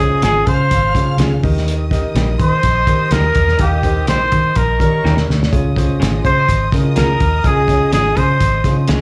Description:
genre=uptempo 1960s-style soul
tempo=125 BPM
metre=4/4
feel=straight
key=unclear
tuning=A4 = 441 Hz
part: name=warm trumpet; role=melody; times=0.0-8.9 s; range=G4 to C5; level=-19 LUFS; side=equal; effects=slapback echo
part: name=vibraphone with soft mallets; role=second line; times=0.0-8.9 s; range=G5 to C6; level=-33 LUFS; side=equal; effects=none
part: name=warm studio violin section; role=second line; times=0.0-9.0 s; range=Db5 to F6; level=-34 LUFS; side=equal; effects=slapback echo
part: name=warm upright piano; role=accompaniment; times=0.0-9.0 s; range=Db3 to F5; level=-27 LUFS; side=equal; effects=none
part: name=vintage muted fingered electric bass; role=bass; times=0.0-9.0 s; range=Ab1 to Eb3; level=-19 LUFS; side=equal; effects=none
part: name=electric guitar through a small old amp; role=stabs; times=0.2-9.0 s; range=G3 to Ab4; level=-28 LUFS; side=equal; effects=slapback echo
part: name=cloth-damped thuddy drum kit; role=drums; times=0.2-9.0 s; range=hi-hat, kick drum, snare drum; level=-21 LUFS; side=equal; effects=none
room=little or no reverb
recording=live gig heard through the venue's PA, club reverb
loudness=-15 LUFS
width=mono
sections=0.0-9.0 A section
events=drum fill 5.0-5.5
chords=0.0 Db; 1.4 Eb; 5.5 Db

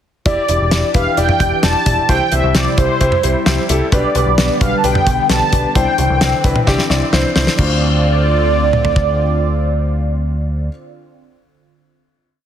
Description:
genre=synth-pop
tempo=131 BPM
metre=4/4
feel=straight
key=D dorian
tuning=A4 = 440 Hz
part: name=mellow synth brass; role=melody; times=0.3-10.7 s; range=C5 to A5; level=-18 LUFS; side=right 1 dB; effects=chorus, phaser, digital delay
part: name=warm concert grand piano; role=accompaniment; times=0.3-10.7 s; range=D4 to D5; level=-21 LUFS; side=left 2 dB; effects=none
part: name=phased analog pad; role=sustained chords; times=0.3-10.7 s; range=C3 to G4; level=-23 LUFS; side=right 1 dB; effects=phaser, chorus
part: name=deep dub picked electric bass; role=bass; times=0.3-10.7 s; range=E1 to D2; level=-18 LUFS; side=equal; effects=none
part: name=damped 70s drum kit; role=drums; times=0.3-9.1 s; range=crash cymbal, hi-hat, kick drum, snare drum, toms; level=-17 LUFS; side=equal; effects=none
room=light reverb, studio ambience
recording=heavily compressed radio sound, multiband compression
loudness=-12 LUFS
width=side -9 dB against mid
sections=0.3-7.6 pre-chorus; 7.6-11.3 final chord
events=drum fill 6.7-7.6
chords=0.3 Em7; 2.1 C; 3.9 G/B; 5.8 Cadd9; 7.6 Dm7

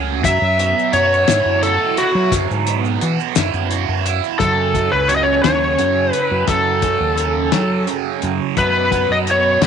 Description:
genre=psychedelic rock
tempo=58 BPM (dotted quarters)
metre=6/8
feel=straight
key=F# dorian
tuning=A4 = 441 Hz
part: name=fuzz guitar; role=riff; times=0.0-9.7 s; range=F#2 to F#4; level=-21 LUFS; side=right 14 dB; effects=distortion, phaser
part: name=growling fingered electric bass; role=bass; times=0.0-9.7 s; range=C#2 to F#3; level=-21 LUFS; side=left 1 dB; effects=overdrive
part: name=overdriven slide guitar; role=melody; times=0.2-9.6 s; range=F#4 to E5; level=-16 LUFS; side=left 2 dB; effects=slapback echo
part: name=cloth-damped thuddy drum kit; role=drums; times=0.2-9.7 s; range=hi-hat, kick drum, snare drum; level=-21 LUFS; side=left 7 dB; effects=none
part: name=maracas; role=percussion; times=0.3-4.3 s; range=none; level=-30 LUFS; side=left 17 dB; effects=none
room=light reverb, small room ambience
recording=1960s-style stereo with parts hard left and right, nothing above 10.8 kHz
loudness=-14 LUFS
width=side -7 dB against mid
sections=0.0-4.4 A section; 4.4-9.7 B section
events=electric slide guitar solo 0.0-4.4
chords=0.2 Bsus4/F#; 4.4 F#m; 8.6 B5/F#

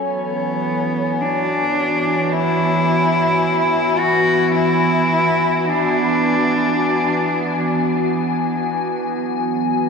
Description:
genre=ambient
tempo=53 BPM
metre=4/4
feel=straight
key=unclear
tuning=A4 = 441 Hz
part: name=glassy FM pad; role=sustained chords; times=0.0-9.9 s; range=E3 to G#5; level=-18 LUFS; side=equal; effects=ensemble chorus, built-in reverb
part: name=warm cello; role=melody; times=0.1-8.0 s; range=B3 to F#4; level=-19 LUFS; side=equal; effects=ping-pong delay
room=wet huge ambient reverb, RT60 9.2 s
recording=cassette tape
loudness=-16 LUFS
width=side -5 dB against mid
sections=0.0-9.1 A section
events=none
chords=0.1 E7; 9.1 N.C.

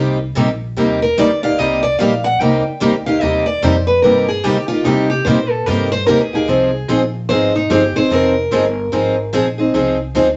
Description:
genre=acoustic string swing (jazz manouche)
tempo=147 BPM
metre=4/4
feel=swing 63% on 8ths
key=C minor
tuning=A4 = 441 Hz
part: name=picked steel-string acoustic guitar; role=accompaniment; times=0.0-10.3 s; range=C3 to Ab4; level=-19 LUFS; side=equal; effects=none
part: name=picked steel-string acoustic guitar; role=accompaniment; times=0.0-10.3 s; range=C3 to Ab4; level=-22 LUFS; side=equal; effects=none
part: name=upright bass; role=bass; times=0.0-10.4 s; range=F1 to D3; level=-26 LUFS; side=equal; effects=none
part: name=picked steel-string acoustic guitar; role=second line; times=1.0-9.3 s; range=Eb4 to G5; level=-19 LUFS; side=equal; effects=none
room=moderate studio reverb, RT60 0.6 s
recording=nothing above 7.9 kHz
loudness=-16 LUFS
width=mono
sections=0.0-10.4 A section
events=steel-string acoustic guitar solo 0.0-10.4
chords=0.0 Cm9; 6.5 Fm9

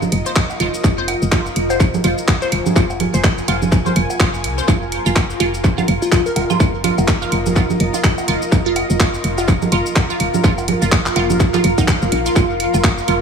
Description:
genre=minimal techno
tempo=125 BPM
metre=4/4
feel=swing 58% on 16ths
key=F minor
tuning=A4 = 440 Hz
part: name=woody FM bass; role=bass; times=0.0-13.2 s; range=Eb1 to C2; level=-21 LUFS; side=equal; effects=sidechain pumping
part: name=garage drum kit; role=drums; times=0.0-13.2 s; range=cabasa, handclaps, hi-hat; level=-23 LUFS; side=equal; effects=tape echo
part: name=congas, claves and cowbell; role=percussion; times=0.0-13.2 s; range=none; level=-22 LUFS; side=right 5 dB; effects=dub echo
part: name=granular cloud pad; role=texture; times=0.0-13.2 s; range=F4 to Ab5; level=-22 LUFS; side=left 1 dB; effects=built-in reverb, sidechain pumping
part: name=resonant blip pluck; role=riff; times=0.3-13.1 s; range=Eb4 to F5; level=-23 LUFS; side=right 3 dB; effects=phaser, sidechain pumping, dub echo
part: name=electronic kick drum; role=drums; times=0.4-13.0 s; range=none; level=-15 LUFS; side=equal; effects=none
part: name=plucky unison lead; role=melody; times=6.0-6.5 s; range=F4 to Bb4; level=-23 LUFS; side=left 4 dB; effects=tape echo
room=light reverb, digital ambience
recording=echo-heavy mix, studio reverb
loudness=-14 LUFS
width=side -6 dB against mid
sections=0.0-13.2 A section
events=none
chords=0.0 Fsus4

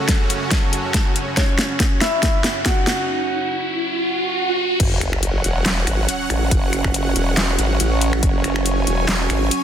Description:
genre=heavy wobble dubstep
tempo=140 BPM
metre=4/4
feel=swing 54% on 16ths, half-time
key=F# minor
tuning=A4 = 440 Hz
part: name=warm concert grand piano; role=melody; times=0.0-4.7 s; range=A3 to F#5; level=-25 LUFS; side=left 1 dB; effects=tape echo
part: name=supersaw pad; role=sustained chords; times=0.0-9.6 s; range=F#2 to G#5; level=-27 LUFS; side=right 2 dB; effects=sidechain pumping
part: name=riser, swell and sub drop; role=sound effects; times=1.3-6.5 s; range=none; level=-24 LUFS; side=right 1 dB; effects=none
part: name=deep dark ambient pad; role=texture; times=0.0-9.6 s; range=C#4 to C#6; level=-28 LUFS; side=right 6 dB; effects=chorus, built-in reverb, sidechain pumping
part: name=dubstep drum kit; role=drums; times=0.1-9.6 s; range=crash cymbal, finger snaps, handclaps, hi-hat, snare drum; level=-22 LUFS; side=left 1 dB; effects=overdrive
part: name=electronic kick drum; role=drums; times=0.1-8.3 s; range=none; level=-19 LUFS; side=equal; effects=overdrive
part: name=formant-sweep wobble bass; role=bass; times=4.8-9.5 s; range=E1 to A1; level=-20 LUFS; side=equal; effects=chorus, overdrive
room=light reverb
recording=dense, heavily limited modern master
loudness=-17 LUFS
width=side -9 dB against mid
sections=0.0-4.8 A section; 4.8-9.6 B section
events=build-up 0.0-4.8; drum fill 0.0-3.1; riser 1.3-4.8; break 3.1-4.8; swell 3.9-4.8; drop 4.8-9.6; impact 4.8-6.5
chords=0.0 F#5

